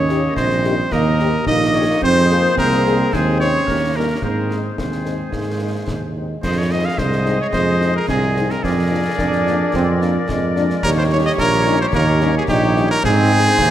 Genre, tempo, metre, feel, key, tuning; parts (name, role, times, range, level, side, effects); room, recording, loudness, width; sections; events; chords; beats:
military-style march for wind band; 109 BPM; 2/4; straight; Ab major; A4 = 441 Hz
bright cornet; melody; 0.0-13.7 s; G4 to F5; -20 LUFS; equal
clear woodwind section; second line; 0.0-13.7 s; Eb4 to Eb5; -24 LUFS; left 2 dB
mellow euphonium; second line; 0.0-6.1 s; Ab3 to Eb4; -22 LUFS; right 2 dB
warm trombone section; sustained chords; 0.0-13.7 s; G3 to Eb4; -25 LUFS; right 2 dB
mellow tuba; bass; 0.0-13.7 s; Bb1 to Ab2; -19 LUFS; right 2 dB
mellow French horn section; accompaniment; 0.1-13.4 s; F3 to Ab4; -28 LUFS; left 7 dB
concert snare drum, concert bass drum and clash cymbals; drums; 0.1-13.7 s; -28 LUFS; left 1 dB
moderate concert hall reverb, RT60 2.4 s; -15 LUFS; side -11 dB against mid
0.0-6.4 A section; 6.4-13.7 B section
0.0 Eb7; 2.0 Fm; 3.1 Ab/Eb; 3.7 Eb7; 4.2 Ab; 6.4 Fm7; 8.6 Bb7/F; 10.8 Eb7; 13.0 Ab
0.38 | 0.93 1.48 | 2.03 2.58 | 3.13 3.68 | 4.23 4.79 | 5.34 5.89 | 6.44 6.99 | 7.54 8.09 | 8.64 9.19 | 9.74 10.29 | 10.84 11.39 | 11.94 12.49 | 13.04 13.59